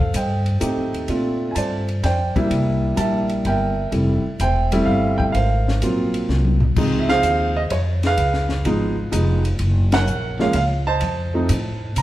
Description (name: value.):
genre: jazz piano trio.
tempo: 127 BPM.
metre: 3/4.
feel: swing 69% on 8ths.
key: F major, Db major from 6.8 s.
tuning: A4 = 440 Hz.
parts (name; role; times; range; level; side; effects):
warm grand piano; melody; 0.0-12.0 s; F3 to Bb5; -20 LUFS; right 1 dB; none.
upright bass; bass; 0.0-12.0 s; E1 to C3; -21 LUFS; equal; none.
compact cocktail drum kit; drums; 0.0-12.0 s; crash cymbal, hi-hat, kick drum, ride cymbal, snare drum, toms; -27 LUFS; left 2 dB; none.
room: wet large studio reverb, RT60 1.5 s.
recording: heard from further back in the room.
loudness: -17 LUFS.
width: side -14 dB against mid.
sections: 0.0-6.8 A section; 6.8-12.0 B section.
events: drum fill 6.3-6.8; band accent 9.8.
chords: 0.0 F9; 1.1 Bbmaj9; 2.5 C7; 3.9 Fmaj9; 5.3 Ab13; 6.8 Dbmaj9; 8.2 Db7; 9.6 Gbmaj7; 11.0 F7.